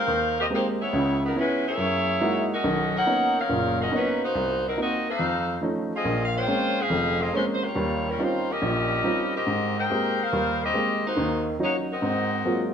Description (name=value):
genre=jazz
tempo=141 BPM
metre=4/4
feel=swing 67% on 8ths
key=Ab major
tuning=A4 = 440 Hz
part: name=clear saxophone section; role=melody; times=0.0-12.7 s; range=Gb3 to G5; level=-25 LUFS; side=left 1 dB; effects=none
part: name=warm baby grand piano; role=accompaniment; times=0.1-12.7 s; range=F1 to G4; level=-25 LUFS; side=right 1 dB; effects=none
room=wet large studio reverb, RT60 1.2 s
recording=none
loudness=-22 LUFS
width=side -7 dB against mid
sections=0.0-12.7 A section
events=none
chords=0.0 Abmaj9; 0.9 Dbm7; 1.8 Gb13; 2.6 Bmaj9; 4.3 Cm7b5; 5.2 F7b13; 6.0 Bbm9; 7.7 Eb13; 9.5 Abmaj9; 11.2 Ebm7; 12.0 Ab13